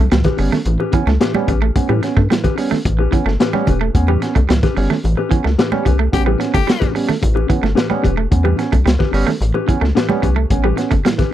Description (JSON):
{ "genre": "funk", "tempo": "110 BPM", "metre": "4/4", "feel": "straight", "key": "A mixolydian", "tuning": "A4 = 441 Hz", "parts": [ { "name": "mellow electric guitar", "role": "accompaniment", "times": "0.0-11.3 s", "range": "C#4 to B4", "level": "-23 LUFS", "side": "left 6 dB", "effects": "spring reverb" }, { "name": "electric guitar at the edge of break-up", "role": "riff", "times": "0.0-11.1 s", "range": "E3 to A3", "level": "-22 LUFS", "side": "right 9 dB", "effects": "none" }, { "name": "rubbery square bass", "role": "bass", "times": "0.0-11.0 s", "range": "E1 to A2", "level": "-16 LUFS", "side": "equal", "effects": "none" }, { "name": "barky tine electric piano", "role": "stabs", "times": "0.1-11.2 s", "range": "A2 to C#4", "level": "-21 LUFS", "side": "right 3 dB", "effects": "overdrive, phaser" }, { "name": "crunchy breakbeat drum kit", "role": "drums", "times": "0.1-11.3 s", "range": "hi-hat, kick drum, snare drum", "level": "-18 LUFS", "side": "left 1 dB", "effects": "none" }, { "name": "congas", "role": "percussion", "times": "0.1-11.3 s", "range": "none", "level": "-25 LUFS", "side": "right 3 dB", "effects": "none" }, { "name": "raspy tenor saxophone", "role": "second line", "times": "6.1-6.9 s", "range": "G4", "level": "-21 LUFS", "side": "left 10 dB", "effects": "none" } ], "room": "little or no reverb", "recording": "dry, close 1970s-style studio recording", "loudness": "-14 LUFS", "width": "side -12 dB against mid", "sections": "0.0-11.3 A section", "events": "band accent 5.0-7.2", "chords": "0.0 A9" }